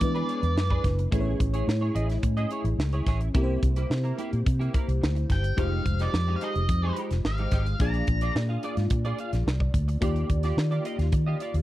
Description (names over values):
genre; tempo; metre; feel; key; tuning
polished 1980s jazz-funk pop; 108 BPM; 4/4; straight; unclear; A4 = 437 Hz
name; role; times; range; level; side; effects
octave-fuzz lead guitar; melody; 0.0-0.8, 5.3-8.3 s; D5 to Bb5; -33 LUFS; right 1 dB; distortion, slapback echo
FM electric piano with soft pad layer; accompaniment; 0.0-11.6 s; G#3 to D5; -32 LUFS; left 1 dB; lush chorus
clean electric guitar; riff; 0.0-11.6 s; Ab3 to F5; -36 LUFS; right 3 dB; ensemble chorus
vintage muted fingered electric bass; bass; 0.0-11.6 s; F1 to E3; -26 LUFS; equal; none
tight funk drum kit; drums; 0.0-11.6 s; hi-hat, kick drum, snare drum; -27 LUFS; equal; none
room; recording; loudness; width
small room reverb; dry, close 1970s-style studio recording; -24 LUFS; side -15 dB against mid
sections
0.0-11.6 A section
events
none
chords
0.0 E7; 1.1 Amaj7; 3.4 C7; 5.6 Fm9; 7.8 Bb7; 10.0 Ebmaj9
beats
0.02 0.57 | 1.13 1.68 2.24 2.79 | 3.35 3.91 4.46 5.02 | 5.57 6.13 6.68 7.24 | 7.80 8.35 8.91 9.46 | 10.02 10.57 11.13